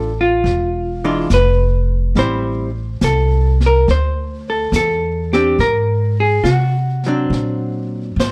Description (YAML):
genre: jazz ballad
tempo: 70 BPM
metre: 4/4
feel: swing 69% on 8ths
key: unclear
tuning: A4 = 442 Hz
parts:
  - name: vintage hollow-body jazz guitar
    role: melody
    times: 0.0-8.3 s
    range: F4 to C5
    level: -20 LUFS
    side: equal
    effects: none
  - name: archtop guitar, miked and amplified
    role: accompaniment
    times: 0.0-8.1 s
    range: E3 to F4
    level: -22 LUFS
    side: equal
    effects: none
  - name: upright bass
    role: bass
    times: 0.0-8.3 s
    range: E1 to C3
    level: -20 LUFS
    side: equal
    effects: none
  - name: jazz brush drum kit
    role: drums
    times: 0.5-8.3 s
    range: brushed snare drum, hi-hat, snare drum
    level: -27 LUFS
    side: equal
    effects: none
room: light reverb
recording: dark, warm production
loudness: -17 LUFS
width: mono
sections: 0.0-8.3 A section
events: none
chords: 0.4 E7b9; 2.1 Am7; 5.6 Ab7#11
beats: 0.44 1.29 | 2.15 3.01 3.86 4.72 | 5.57 6.43 7.30 8.17